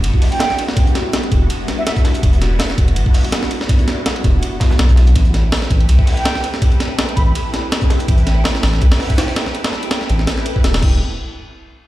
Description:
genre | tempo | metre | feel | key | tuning
drum and bass, jungle | 164 BPM | 4/4 | swing 55% on 16ths | E minor | A4 = 438 Hz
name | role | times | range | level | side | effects
soft string machine | sustained chords | 0.0-11.0 s | G3 to B4 | -24 LUFS | equal | phaser, ensemble chorus
saturated sub bass | bass | 0.0-11.0 s | E1 to C2 | -14 LUFS | equal | none
breakbeat sampler-style drum kit | drums | 0.0-10.9 s | crash cymbal, hi-hat, kick drum, ride cymbal, snare drum | -15 LUFS | equal | none
crunchy breakbeat drum kit | drums | 0.0-10.8 s | hi-hat, shaker, snare drum | -30 LUFS | right 1 dB | high-pass filter on hats, high-pass filter on snare, high-pass filter on perc, high-pass filter on room
breathy concert flute | melody | 0.3-1.9, 6.2-7.3 s | E5 to B5 | -25 LUFS | right 2 dB | dub echo
room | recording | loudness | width
studio reverb | played on a big sound system in a bare room, large studio reverb | -13 LUFS | side -16 dB against mid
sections
0.0-11.0 A section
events
drop 0.0-11.0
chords
0.0 Em9; 5.2 Am9; 10.8 Em9; 11.0 N.C.

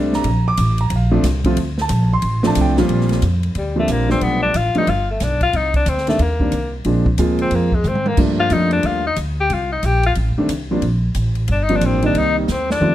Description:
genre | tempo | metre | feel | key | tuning
jazz, small-group swing and bop | 182 BPM | 4/4 | swing 63% on 8ths | Bb major | A4 = 441 Hz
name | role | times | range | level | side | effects
warm concert grand piano | accompaniment | 0.0-12.9 s | Bb2 to D6 | -19 LUFS | right 1 dB | none
upright bass | bass | 0.0-12.9 s | G1 to Ab2 | -19 LUFS | equal | none
swinging big-band drum kit | drums | 0.1-12.9 s | crash cymbal, hi-hat, kick drum, ride cymbal, snare drum, toms | -25 LUFS | equal | none
clear tenor saxophone | melody | 3.6-12.9 s | G3 to G4 | -20 LUFS | left 3 dB | plate reverb
room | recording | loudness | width
light reverb | dark, warm production | -15 LUFS | side -13 dB against mid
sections
0.0-2.9 A section; 2.9-12.9 B section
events
drum fill 7.8-8.2, 12.5-12.9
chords
0.3 Bbmaj9; 2.9 Bb69; 4.2 G7; 5.5 Cm9; 6.9 Bb7; 8.2 Ebmaj9#11; 9.5 Eb69; 10.2 F13; 10.8 Bb69; 12.1 Cm7

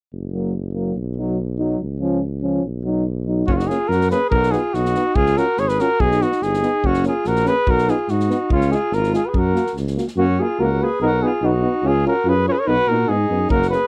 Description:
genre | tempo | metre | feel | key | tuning
balkan folk, Balkan brass band | 144 BPM | 2/4 | straight | F# major | A4 = 438 Hz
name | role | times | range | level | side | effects
mellow tuba | bass | 0.1-13.7 s | F#1 to A#2 | -24 LUFS | equal | none
clear trombone | accompaniment | 0.3-13.8 s | E#3 to C#4 | -28 LUFS | equal | none
warm euphonium | accompaniment | 0.3-13.8 s | A#3 to F#4 | -27 LUFS | equal | none
mellow cornet | melody | 3.5-13.9 s | E#4 to C#5 | -22 LUFS | equal | none
warm alto saxophone | second line | 3.5-13.9 s | C#4 to A#4 | -28 LUFS | equal | none
natural country drum kit | percussion | 3.5-10.1, 13.5-13.8 s | kick drum, snare drum | -27 LUFS | equal | none
room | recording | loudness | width
little or no reverb | dry, close 1970s-style studio recording | -19 LUFS | mono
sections
0.1-3.5 A section; 3.5-10.2 B section; 10.2-13.9 B section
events
none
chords
0.1 F#; 1.0 B; 1.8 C#; 2.6 B; 3.5 F#; 4.3 B; 5.2 C#; 6.0 B; 6.8 F#; 7.7 B; 8.5 C#; 9.3 F#; 11.0 B; 11.8 C#; 12.7 B

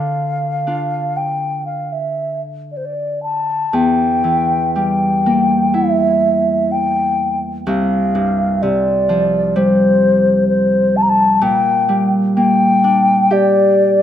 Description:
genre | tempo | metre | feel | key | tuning
celtic folk, Celtic slow air | 56-65 BPM | 4/4 | rubato | unclear | A4 = 440 Hz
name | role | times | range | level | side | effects
mellow hollow wooden flute | melody | 0.0-14.0 s | C5 to Bb5 | -15 LUFS | left 2 dB | none
Celtic harp | accompaniment | 0.0-14.0 s | C2 to G4 | -17 LUFS | right 1 dB | none
room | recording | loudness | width
moderate scoring stage reverb, RT60 1.8 s | minimal, uncompressed stereo recording | -13 LUFS | side -10 dB against mid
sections
0.0-3.7 A section; 3.7-14.0 B section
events
none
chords
0.0 Dm; 3.7 Edim; 7.7 Csus4; 11.4 Gm/Bb

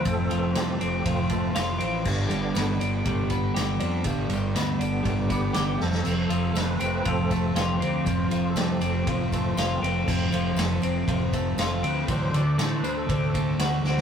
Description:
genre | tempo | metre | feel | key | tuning
psychedelic rock | 120 BPM | 4/4 | straight | unclear | A4 = 440 Hz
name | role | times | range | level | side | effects
bright tonewheel organ | sustained chords | 0.0-13.4 s | D3 to D5 | -32 LUFS | right 1 dB | slow rotary speaker, chorus vibrato
twelve-string electric guitar | riff | 0.0-14.0 s | F2 to G4 | -26 LUFS | equal | none
fuzz fingered electric bass | bass | 0.0-14.0 s | F1 to A2 | -29 LUFS | equal | overdrive
vintage drum kit | drums | 0.1-14.0 s | crash cymbal, kick drum, ride cymbal, snare drum | -30 LUFS | equal | none
tambourine | percussion | 0.1-13.9 s | none | -46 LUFS | left 5 dB | none
room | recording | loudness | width
moderate booth ambience, RT60 0.2 s | rough rehearsal-room recording, warm saturation | -23 LUFS | side -7 dB against mid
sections
0.0-14.0 A section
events
tonewheel organ solo 0.0-14.0; drum fill 5.8, 13.8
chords
0.0 F; 2.1 G; 5.8 F; 12.1 D7

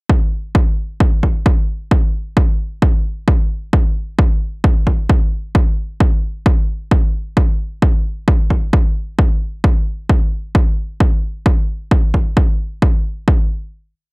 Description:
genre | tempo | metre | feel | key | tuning
techno | 132 BPM | 4/4 | straight | none | none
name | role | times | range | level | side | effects
electronic kick drum | drums | 0.1-13.4 s | none | -13 LUFS | equal | none
room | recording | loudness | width
little or no reverb | dry, gritty hardware recording, transformer saturation | -14 LUFS | side -27 dB against mid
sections
0.1-14.1 A section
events
break 13.7-14.1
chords
none

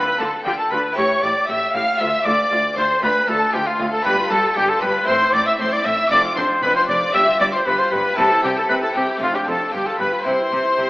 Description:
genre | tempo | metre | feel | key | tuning
classical, baroque-style concerto movement with solo episodes | 117 BPM | 4/4 | straight | unclear | A4 = 440 Hz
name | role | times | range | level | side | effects
mellow trumpet | melody | 0.0-10.9 s | F4 to F5 | -20 LUFS | equal | none
rich chamber violin section | melody | 0.0-10.9 s | F5 to F6 | -25 LUFS | left 2 dB | none
rich studio violin section | second line | 0.0-10.9 s | F4 to F5 | -22 LUFS | left 1 dB | none
harpsichord | accompaniment | 0.0-10.9 s | D2 to C5 | -28 LUFS | equal | none
rich symphonic viola section | accompaniment | 0.0-10.9 s | C4 to G4 | -28 LUFS | right 1 dB | none
clear chamber cello section | bass | 0.0-10.9 s | D2 to D3 | -29 LUFS | right 1 dB | none
rich chamber double bass section | bass | 0.0-10.9 s | F1 to D2 | -35 LUFS | right 1 dB | none
room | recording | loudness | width
wet recital hall reverb, RT60 1.5 s | AM radio sound | -16 LUFS | side -20 dB against mid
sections
0.0-10.9 A section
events
none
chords
0.0 Dm; 1.0 A5; 2.0 Dm; 4.1 G5; 5.1 Am; 6.1 Dm/F; 7.1 G5; 8.2 C; 9.2 Dm/F; 9.7 G7; 10.3 C

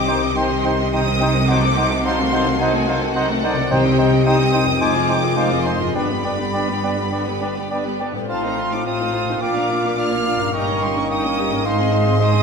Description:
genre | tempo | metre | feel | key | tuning
classical, dramatic, fast romantic movement for symphony orchestra | 107 BPM | 4/4 | rubato | C minor | A4 = 444 Hz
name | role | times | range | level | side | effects
clear symphonic violin section | melody | 0.0-12.4 s | Gb5 to F6 | -25 LUFS | left 1 dB | none
rich studio violin section | second line | 0.0-12.4 s | Eb4 to F5 | -28 LUFS | left 2 dB | none
rich studio viola section | accompaniment | 0.0-12.4 s | Eb3 to F4 | -25 LUFS | right 2 dB | none
dark French horn section | sustained chords | 0.0-12.4 s | D3 to Ab4 | -27 LUFS | left 4 dB | none
concert harp | arpeggios | 0.0-12.4 s | F2 to C5 | -26 LUFS | left 6 dB | none
clear symphonic cello section | bass | 0.0-12.4 s | F2 to C3 | -26 LUFS | right 1 dB | none
warm symphonic double bass section | bass | 0.0-12.4 s | F1 to C2 | -25 LUFS | right 4 dB | none
bright concert flute | second line | 0.1-12.4 s | Gb5 to D6 | -29 LUFS | right 1 dB | none
warm oboe | second line | 0.1-12.4 s | C5 to F5 | -28 LUFS | right 2 dB | none
mellow bassoon | accompaniment | 0.1-12.4 s | Ab3 to Eb4 | -27 LUFS | right 1 dB | none
mellow clarinet | second line | 0.4-12.4 s | C5 to Ab5 | -28 LUFS | left 1 dB | none
timpani | percussion | 3.7-4.5 s | C3 | -26 LUFS | right 2 dB | none
room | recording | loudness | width
wet scoring stage reverb, RT60 1.9 s | minimal, uncompressed stereo recording | -16 LUFS | side -5 dB against mid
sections
0.0-12.4 A section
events
none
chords
0.0 Cm; 1.5 Cdim7; 3.7 Cm; 4.8 Fm7; 6.0 G; 8.3 F7/A; 9.4 Bb; 10.5 Eb7/G; 11.7 Ab

